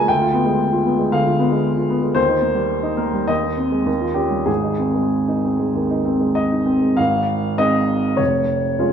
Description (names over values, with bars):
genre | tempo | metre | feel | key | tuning
classical, romantic character piece for solo piano | 92-119 BPM | 4/4 | rubato | Ab major | A4 = 441 Hz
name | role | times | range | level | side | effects
warm baby grand piano | solo | 0.0-8.9 s | F1 to C6 | -16 LUFS | equal | none
room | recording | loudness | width
wet recital hall reverb, RT60 1.4 s | dark, warm production | -16 LUFS | side -8 dB against mid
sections
0.0-7.0 A section; 7.0-8.9 B section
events
none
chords
0.1 Ddim7; 2.2 Eb; 3.3 Ab/Eb; 3.9 Eb9; 4.5 Ab; 8.2 Db/F